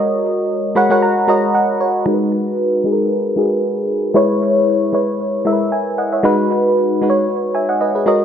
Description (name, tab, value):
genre	amapiano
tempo	115 BPM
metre	4/4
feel	swing 55% on 16ths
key	G# minor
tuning	A4 = 437 Hz
part	mellow FM electric piano	solo	0.0-8.2 s	G#3 to B5	-14 LUFS	equal	chorus, low-pass filter, tape echo
room	light reverb, digital ambience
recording	none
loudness	-14 LUFS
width	side -8 dB against mid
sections	0.0-2.1 A section; 2.1-8.2 B section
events	drop 0.0-2.1; FM electric piano fill 0.5-2.1; filter sweep on FM electric piano 2.1-8.2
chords	0.0 G#m11; 2.1 G#m7; 4.2 Emaj13/G#; 6.2 G#m7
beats	0.50 1.02 1.54 | 2.06 2.59 3.11 3.63 | 4.15 4.67 5.20 5.72 | 6.24 6.76 7.28 7.80